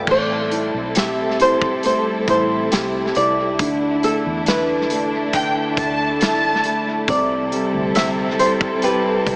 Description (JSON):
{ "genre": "pop ballad", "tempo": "69 BPM", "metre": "4/4", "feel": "straight", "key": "A minor", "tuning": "A4 = 438 Hz", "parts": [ { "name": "dark baby grand piano", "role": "accompaniment", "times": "0.0-9.4 s", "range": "C3 to G4", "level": "-22 LUFS", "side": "equal", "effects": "tape echo" }, { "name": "warm studio string section", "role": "sustained chords", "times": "0.0-9.4 s", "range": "G3 to A4", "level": "-23 LUFS", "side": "equal", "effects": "none" }, { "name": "vintage muted fingered electric bass", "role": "bass", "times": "0.0-9.4 s", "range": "A1 to E2", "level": "-33 LUFS", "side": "equal", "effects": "none" }, { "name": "flamenco guitar", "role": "melody", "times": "0.1-9.4 s", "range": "A4 to E5", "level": "-20 LUFS", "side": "equal", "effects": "tape echo" }, { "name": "loose indie drum kit", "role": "drums", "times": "0.1-9.4 s", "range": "crash cymbal, hi-hat, kick drum, snare drum", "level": "-23 LUFS", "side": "equal", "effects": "tape echo" }, { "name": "warm studio violin section", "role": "second line", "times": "5.3-6.8 s", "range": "G5 to A5", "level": "-20 LUFS", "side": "equal", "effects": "none" } ], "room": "moderate echo chamber reverb, RT60 2.2 s", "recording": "echo-heavy mix, small speaker sound", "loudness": "-16 LUFS", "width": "side -35 dB against mid", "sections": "0.1-9.4 A section", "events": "none", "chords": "0.1 Am7; 3.6 Dsus2; 7.1 Am7/C", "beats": "| 0.07 0.96 1.84 2.72 | 3.59 4.47 5.34 6.21 | 7.08 7.95 8.83" }